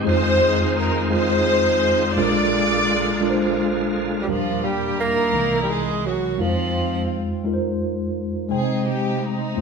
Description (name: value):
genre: slow gospel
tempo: 57 BPM (dotted quarters)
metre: 6/8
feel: straight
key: unclear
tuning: A4 = 439 Hz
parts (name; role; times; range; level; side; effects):
- dark studio string section; melody; 0.0-9.6 s; Ab3 to D5; -22 LUFS; left 1 dB; none
- mellow tine electric piano; accompaniment; 0.0-9.6 s; Bb1 to G5; -22 LUFS; equal; medium stereo tremolo
- bright tonewheel organ; sustained chords; 0.0-4.3 s; D3 to F4; -26 LUFS; right 2 dB; slow rotary speaker, chorus vibrato
- breathy tenor saxophone; melody; 4.2-7.2 s; F3 to Bb3; -24 LUFS; right 4 dB; none
room: wet stone room reverb, RT60 1.3 s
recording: band playing live in one room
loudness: -18 LUFS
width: side -5 dB against mid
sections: 0.0-4.3 A section; 4.3-9.6 B section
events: none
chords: 0.1 Fm7; 2.2 Bb7; 4.3 Ebmaj7; 5.3 C7alt; 6.4 Fm7; 8.5 Abmaj7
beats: | 0.06 1.11 | 2.17 3.22 | 4.28 5.33 | 6.39 7.45 | 8.51 9.56